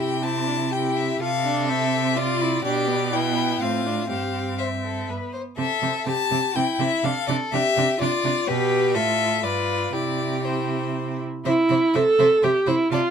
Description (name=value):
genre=quick classical-period movement for string quartet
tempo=123 BPM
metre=3/4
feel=rubato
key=C major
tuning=A4 = 440 Hz
part: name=clear violin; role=melody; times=0.0-13.0 s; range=B4 to A5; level=-25 LUFS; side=left 6 dB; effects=none
part: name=rich violin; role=second line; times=0.0-13.0 s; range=E4 to D5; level=-27 LUFS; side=left 3 dB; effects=none
part: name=rich viola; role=accompaniment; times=0.0-13.1 s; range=B3 to A4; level=-24 LUFS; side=right 2 dB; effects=none
part: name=clear cello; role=bass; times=0.0-13.0 s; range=G2 to C3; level=-27 LUFS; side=right 5 dB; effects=none
room=light reverb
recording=minimal, uncompressed stereo recording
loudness=-20 LUFS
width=side -7 dB against mid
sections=0.0-11.4 A section; 11.4-13.1 B section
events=none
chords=0.0 C; 1.2 Dm7/C; 2.6 G/B; 3.6 F/A; 4.1 C/G; 5.1 G; 5.6 C; 7.0 Dm7/C; 8.5 G/B; 9.0 F/A; 9.4 G7; 9.9 C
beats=0.24 0.72 | 1.21 1.69 2.17 | 2.65 3.13 3.61 | 4.09 4.58 5.08 | 5.58 6.07 6.56 | 7.04 7.53 8.01 | 8.48 8.96 9.44 | 9.93 10.44 10.95 | 11.45 11.94 12.42 | 12.91